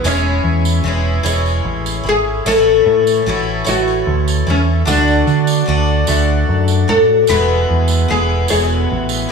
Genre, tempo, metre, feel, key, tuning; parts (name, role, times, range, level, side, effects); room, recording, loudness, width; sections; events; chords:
folk rock and heartland rock; 50 BPM (dotted quarters); 6/8; straight; A4 = 442 Hz
oud; melody; 0.0-9.3 s; C#4 to B4; -16 LUFS; left 3 dB; slapback echo
picked twelve-string acoustic guitar; accompaniment; 0.0-9.3 s; E2 to F#4; -20 LUFS; left 4 dB
hand-pumped harmonium; sustained chords; 0.0-9.3 s; E4 to A5; -26 LUFS; right 2 dB
deep dub picked electric bass; bass; 0.0-9.2 s; E1 to D3; -16 LUFS; right 1 dB
tambourine; percussion; 0.0-9.3 s; -27 LUFS; right 10 dB
warm concert grand piano; accompaniment; 0.1-9.3 s; E4 to E5; -27 LUFS; right 7 dB
light reverb, studio ambience; studio reverb; -12 LUFS; side -5 dB against mid
0.0-9.3 A section
0.0 C#m/E; 2.5 A; 4.9 D; 7.3 E